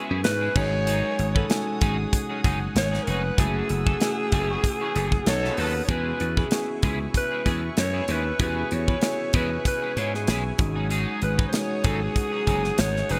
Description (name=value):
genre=polished 1980s jazz-funk pop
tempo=96 BPM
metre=4/4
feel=swing 54% on 16ths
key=E major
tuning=A4 = 440 Hz
part: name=tine electric piano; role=accompaniment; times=0.0-13.2 s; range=G#3 to G#5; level=-35 LUFS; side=equal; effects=subtle chorus
part: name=warm analog pad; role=sustained chords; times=0.0-13.2 s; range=A3 to E6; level=-40 LUFS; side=equal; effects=chorus, tremolo
part: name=clean electric guitar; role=riff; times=0.0-13.2 s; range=E3 to B4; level=-35 LUFS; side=equal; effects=analog chorus
part: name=slap bass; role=bass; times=0.1-13.2 s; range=F1 to G#2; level=-30 LUFS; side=equal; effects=none
part: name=breathy alto saxophone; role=melody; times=0.2-13.2 s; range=G#4 to C#5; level=-31 LUFS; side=equal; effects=delay
part: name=modern studio drum kit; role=drums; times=0.2-13.2 s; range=crash cymbal, hi-hat, kick drum, snare drum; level=-28 LUFS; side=equal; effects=none
part: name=clear horn section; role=second line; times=4.5-5.7 s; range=E3 to A4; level=-38 LUFS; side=equal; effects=none
room=light reverb, studio reverb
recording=bright 1980s-style digital production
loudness=-24 LUFS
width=mono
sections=0.0-13.2 A section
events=band accent 3.4-5.9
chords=0.0 E6; 0.6 G#7sus4; 3.4 F#m9; 5.3 B7; 5.9 E6; 10.6 G#7sus4